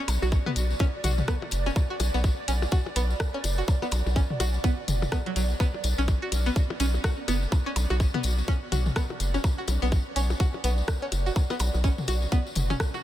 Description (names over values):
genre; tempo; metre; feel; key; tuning
minimal techno; 125 BPM; 4/4; swing 60% on 16ths; B minor; A4 = 440 Hz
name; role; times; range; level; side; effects
pulsing gated texture; texture; 0.0-13.0 s; D5; -38 LUFS; right 4 dB; chorus, built-in reverb, sidechain pumping
rubbery square bass; bass; 0.1-12.7 s; F#1 to B1; -26 LUFS; equal; sidechain pumping
garage drum kit; drums; 0.1-12.9 s; hi-hat, rim click; -37 LUFS; left 1 dB; small room ambience
electronic percussion blips and toms; percussion; 0.1-13.0 s; none; -36 LUFS; left 3 dB; small room ambience, analog delay
tambourine; percussion; 0.1-13.0 s; none; -38 LUFS; left 4 dB; none
string-like resonator pluck; riff; 0.2-13.0 s; F#3 to F#4; -32 LUFS; right 1 dB; chorus, phaser, sidechain pumping, tape echo
electronic kick drum; drums; 0.3-12.9 s; none; -24 LUFS; equal; small room ambience
room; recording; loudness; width
light reverb, digital ambience; none; -24 LUFS; side -13 dB against mid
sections
0.0-13.0 A section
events
none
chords
0.0 Bm